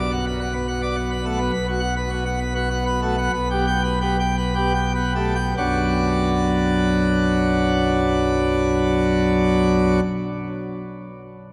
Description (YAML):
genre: classical, organ toccata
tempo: 69-107 BPM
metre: 3/4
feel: straight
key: B minor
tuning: A4 = 441 Hz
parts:
  - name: pipe organ, plenum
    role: solo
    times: 0.0-10.0 s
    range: B1 to G5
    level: -21 LUFS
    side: equal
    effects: none
room: wet cathedral reverb, RT60 5.1 s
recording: none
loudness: -21 LUFS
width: mono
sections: 0.0-1.6 A section; 1.6-5.6 B section; 5.6-10.8 C section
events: slowing down 0.7-5.6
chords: 0.0 Bm; 1.6 B5; 3.3 Gadd9/B; 5.6 Bm